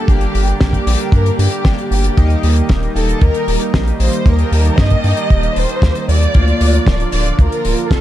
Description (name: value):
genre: italo disco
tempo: 115 BPM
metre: 4/4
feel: straight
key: unclear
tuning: A4 = 439 Hz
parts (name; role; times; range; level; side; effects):
- warm studio violin section; melody; 0.0-8.0 s; G4 to Eb5; -21 LUFS; left 1 dB; vintage 12-bit sampler grit, ping-pong delay
- warm analog pad; sustained chords; 0.0-8.0 s; D3 to A5; -22 LUFS; right 5 dB; chorus, tremolo
- chorused polysynth; stabs; 0.0-8.0 s; Bb3 to Eb5; -24 LUFS; left 4 dB; none
- round analog bass; bass; 0.1-8.0 s; D1 to G2; -15 LUFS; equal; none
- damped 70s drum kit; drums; 0.1-8.0 s; hi-hat, snare drum; -22 LUFS; left 2 dB; none
- kick drum; drums; 0.1-8.0 s; none; -12 LUFS; equal; none
room: small room ambience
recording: dark, warm production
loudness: -12 LUFS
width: side -13 dB against mid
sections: 0.0-8.0 A section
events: none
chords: 0.0 Gm; 2.2 Eb; 6.3 Bb/D